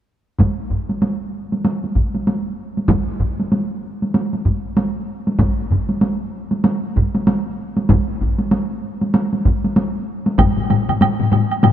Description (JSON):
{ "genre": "japanese traditional, taiko drum ensemble", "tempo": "96 BPM", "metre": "4/4", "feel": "swing 60% on 16ths", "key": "none", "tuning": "none", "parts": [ { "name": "solo taiko drums", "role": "percussion", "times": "0.4-11.7 s", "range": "none", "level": "-19 LUFS", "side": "right 1 dB", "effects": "none" }, { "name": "taiko ensemble", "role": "percussion", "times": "0.4-10.6 s", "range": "none", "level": "-18 LUFS", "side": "equal", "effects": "none" }, { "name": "taiko ensemble", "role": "percussion", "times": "10.4-11.7 s", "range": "none", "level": "-17 LUFS", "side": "left 6 dB", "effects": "none" }, { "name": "woodblock", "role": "percussion", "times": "10.4-11.7 s", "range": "none", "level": "-22 LUFS", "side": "right 7 dB", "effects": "none" } ], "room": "moderate huge ambient reverb, RT60 3.8 s", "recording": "none", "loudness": "-17 LUFS", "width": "side -10 dB against mid", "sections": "0.4-10.4 A section; 10.4-11.7 B section", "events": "none", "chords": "none" }